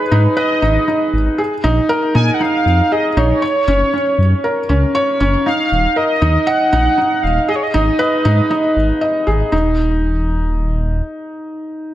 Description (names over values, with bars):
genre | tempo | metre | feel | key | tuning
piano and strings electronica | 118 BPM | 4/4 | straight | unclear | A4 = 444 Hz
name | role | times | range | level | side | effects
warm velvety synth lead | melody | 0.0-9.0 s | Cb5 to Ab5 | -17 LUFS | right 1 dB | chorus, ping-pong delay
felt-muted upright piano | riff | 0.0-11.9 s | Db4 to Eb5 | -17 LUFS | equal | ping-pong delay
dark detuned saw bass | bass | 0.1-11.0 s | Eb1 to Bb2 | -15 LUFS | equal | none
room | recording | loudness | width
light reverb, studio reverb | none | -13 LUFS | side -13 dB against mid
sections
0.0-9.5 A section; 9.5-11.9 B section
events
drop 0.0-9.5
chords
0.0 Abm; 1.4 Bb7sus4; 3.4 Gb; 5.5 Ebm; 7.5 Abm; 9.5 N.C.